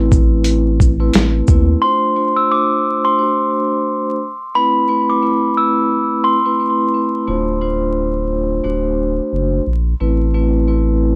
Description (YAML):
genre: hip hop, boom-bap hip-hop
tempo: 88 BPM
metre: 4/4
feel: swing 59% on 16ths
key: unclear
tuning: A4 = 440 Hz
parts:
  - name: vibraphone with soft mallets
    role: accompaniment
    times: 0.0-11.2 s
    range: A3 to C5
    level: -20 LUFS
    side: equal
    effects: cassette tape, high-pass filter, low-pass filter
  - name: saturated sub bass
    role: bass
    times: 0.0-1.8, 7.3-11.2 s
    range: D1 to D#2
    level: -19 LUFS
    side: equal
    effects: tube saturation
  - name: boom bap sampler-style drum kit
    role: drums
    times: 0.1-1.7 s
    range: hi-hat, kick drum, shaker, snare drum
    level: -16 LUFS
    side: equal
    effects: none
  - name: glockenspiel with rubber mallets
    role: melody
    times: 1.8-6.6 s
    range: B5 to E6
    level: -19 LUFS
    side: equal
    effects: high-pass filter, low-pass filter, analog delay
room: little or no reverb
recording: dry, gritty hardware recording, vinyl crackle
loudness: -16 LUFS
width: mono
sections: 0.0-1.8 A section; 1.8-11.2 B section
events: none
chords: 0.0 Amadd9; 1.8 Dm7; 3.2 D7; 4.5 Amadd9; 7.3 Dm7; 8.6 D7; 10.0 Amadd9